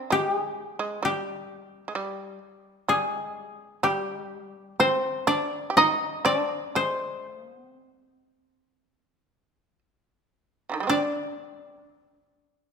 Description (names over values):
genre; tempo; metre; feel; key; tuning
japanese traditional, Japanese chamber music; 53-66 BPM; 4/4; rubato; C hirajoshi; A4 = 440 Hz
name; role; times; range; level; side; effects
koto; melody; 0.0-12.7 s; G4 to Eb5; -25 LUFS; left 2 dB; none
shamisen; second line; 0.0-12.7 s; C3 to G4; -28 LUFS; right 4 dB; none
room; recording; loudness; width
moderate recital hall reverb, RT60 1.7 s; minimal, uncompressed stereo recording; -24 LUFS; side -6 dB against mid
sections
0.0-10.9 A section; 10.9-12.7 B section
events
none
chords
none